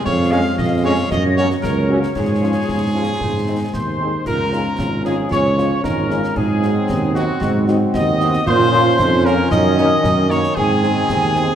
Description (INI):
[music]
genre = military-style march for wind band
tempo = 114 BPM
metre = 2/4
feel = straight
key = Db major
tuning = A4 = 440 Hz
[part]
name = clear cornet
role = melody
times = 0.0-11.6 s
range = Gb4 to F5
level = -24 LUFS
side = right 1 dB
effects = none
[part]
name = mellow hollow flute section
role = second line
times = 0.0-11.6 s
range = Ab4 to Eb6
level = -24 LUFS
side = left 2 dB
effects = none
[part]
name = mellow woodwind section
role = second line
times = 0.0-11.6 s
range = Eb4 to F5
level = -25 LUFS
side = left 2 dB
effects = none
[part]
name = mellow tuba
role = bass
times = 0.1-11.5 s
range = Ab1 to Bb2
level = -18 LUFS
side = right 2 dB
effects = none
[part]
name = concert snare drum, clash cymbals and concert bass drum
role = drums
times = 0.1-11.5 s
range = none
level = -26 LUFS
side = left 1 dB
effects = none
[part]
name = dark French horn section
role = accompaniment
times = 0.3-11.4 s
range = F3 to Ab4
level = -27 LUFS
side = left 4 dB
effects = none
[part]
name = warm trombone section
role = sustained chords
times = 0.3-11.6 s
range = Eb3 to Db4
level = -24 LUFS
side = right 1 dB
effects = none
[part]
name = warm euphonium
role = second line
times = 4.3-11.6 s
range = Bb3 to Ab4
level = -25 LUFS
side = right 6 dB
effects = none
[sound]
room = wet concert hall reverb, RT60 1.9 s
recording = none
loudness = -14 LUFS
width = side -9 dB against mid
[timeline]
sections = 0.0-4.3 A section; 4.3-11.6 B section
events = none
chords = 0.1 Db/F; 1.1 Gb; 2.2 Db/Ab; 3.2 Ab; 4.3 Db; 6.4 Ab7; 8.5 Bbm; 9.5 Ebm7/Gb; 10.6 Ab